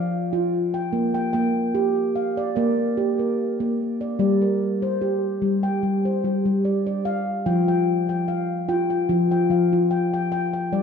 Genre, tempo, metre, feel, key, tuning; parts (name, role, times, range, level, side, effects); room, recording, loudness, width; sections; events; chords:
world meditative, meditative tuned percussion; 74 BPM; 4/4; swing 54% on 16ths; G minor pentatonic; A4 = 440 Hz
handpan; solo; 0.0-10.8 s; F3 to G5; -20 LUFS; equal; diffuse ambient delay
wet concert hall reverb, RT60 1.9 s; dark, warm production; -20 LUFS; side -6 dB against mid
0.0-4.2 A section; 4.2-10.8 B section
0.0 Dmadd11/F (rootless); 0.9 Bb; 4.2 Gm; 7.5 Fsus2